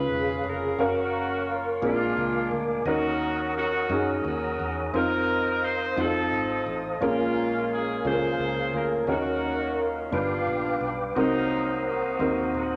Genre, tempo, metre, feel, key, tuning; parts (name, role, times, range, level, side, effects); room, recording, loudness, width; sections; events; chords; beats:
slow gospel; 58 BPM (dotted quarters); 6/8; straight; Bb minor; A4 = 440 Hz
mellow horn section; melody; 0.0-12.8 s; Gb3 to C5; -32 LUFS; equal
warm upright piano; accompaniment; 0.0-12.8 s; G2 to F5; -30 LUFS; equal
percussive tonewheel organ; sustained chords; 0.0-12.8 s; Ab4 to Eb6; -33 LUFS; equal; slow rotary speaker, chorus vibrato
fingered electric bass; bass; 0.0-12.8 s; Eb1 to Gb2; -39 LUFS; equal
wet large studio reverb, RT60 1.4 s; -26 LUFS; mono
0.0-12.8 A section
0.0 Db7; 0.8 Gbmaj7; 1.8 Bb7; 2.9 Ebm7; 4.9 F7sus4; 6.0 F7; 7.0 Bbm7; 9.1 Ebm7; 10.1 G7; 11.2 Cm7b5
| 0.79 1.83 | 2.86 3.90 | 4.94 5.97 | 7.01 8.05 | 9.09 10.12 | 11.16 12.20